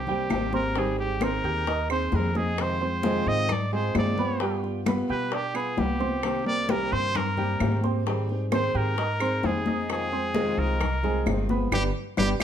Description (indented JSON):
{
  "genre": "latin, Cuban son and guajira",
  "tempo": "131 BPM",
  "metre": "4/4",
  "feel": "straight",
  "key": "C minor",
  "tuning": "A4 = 441 Hz",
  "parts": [
    { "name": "trumpet with straight mute", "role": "melody", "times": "0.0-12.4 s", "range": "G4 to Eb5", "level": "-29 LUFS", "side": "equal", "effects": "none" },
    { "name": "upright bass", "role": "bass", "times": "0.0-12.4 s", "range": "G1 to B2", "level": "-30 LUFS", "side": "equal", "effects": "none" },
    { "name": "fingerpicked steel-string acoustic guitar", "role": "accompaniment", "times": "0.1-12.4 s", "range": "C3 to Ab4", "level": "-31 LUFS", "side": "left 2 dB", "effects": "none" },
    { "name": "clear grand piano", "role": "arpeggios", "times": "0.1-12.3 s", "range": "G3 to G6", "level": "-30 LUFS", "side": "right 5 dB", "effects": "none" },
    { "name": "congas", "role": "percussion", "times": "0.1-12.4 s", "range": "none", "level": "-31 LUFS", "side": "left 2 dB", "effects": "none" },
    { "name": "bongos", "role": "percussion", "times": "0.3-12.4 s", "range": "none", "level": "-34 LUFS", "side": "left 8 dB", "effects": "none" },
    { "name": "claves", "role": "percussion", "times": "0.3-12.4 s", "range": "none", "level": "-37 LUFS", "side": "right 5 dB", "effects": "none" }
  ],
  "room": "moderate large studio reverb, RT60 0.9 s",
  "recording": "none",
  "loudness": "-23 LUFS",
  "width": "side -9 dB against mid",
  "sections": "0.0-12.4 A section",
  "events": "muted trumpet solo 0.0-12.4; band accent 11.7-12.4",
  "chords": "0.0 Cm7; 0.8 Abmaj7; 2.6 Fm7; 4.4 G7; 6.2 Cm7; 8.1 Abmaj7; 9.9 Fm7; 11.7 G"
}